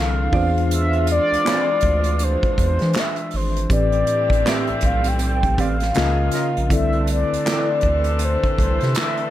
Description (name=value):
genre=R&B, neo-soul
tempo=80 BPM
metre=4/4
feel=swing 61% on 16ths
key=unclear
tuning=A4 = 442 Hz
part: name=mellow horn-like synth lead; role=melody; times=0.0-9.3 s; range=C5 to G5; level=-22 LUFS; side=left 1 dB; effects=chorus
part: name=mellow tine electric piano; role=accompaniment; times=0.0-9.3 s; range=A2 to Eb5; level=-25 LUFS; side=left 2 dB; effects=slow stereo tremolo
part: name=rich studio string section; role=sustained chords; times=0.0-9.3 s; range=Db3 to F4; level=-31 LUFS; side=equal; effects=none
part: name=round analog bass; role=bass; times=0.0-8.9 s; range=G#1 to E3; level=-21 LUFS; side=equal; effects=none
part: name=hollow-body jazz guitar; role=second line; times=0.3-7.7 s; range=C4 to Eb5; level=-25 LUFS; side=right 7 dB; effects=none
part: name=warm horn section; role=stabs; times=0.3-9.3 s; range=D3 to A4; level=-30 LUFS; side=left 1 dB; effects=none
part: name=unplugged drum kit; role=drums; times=0.3-9.3 s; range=handclaps, hi-hat, kick drum, snare drum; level=-23 LUFS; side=equal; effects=none
room=light reverb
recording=none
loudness=-17 LUFS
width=side -13 dB against mid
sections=0.0-9.3 A section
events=none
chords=0.3 E7b9b13; 3.7 Am11; 6.0 Db69; 6.7 C69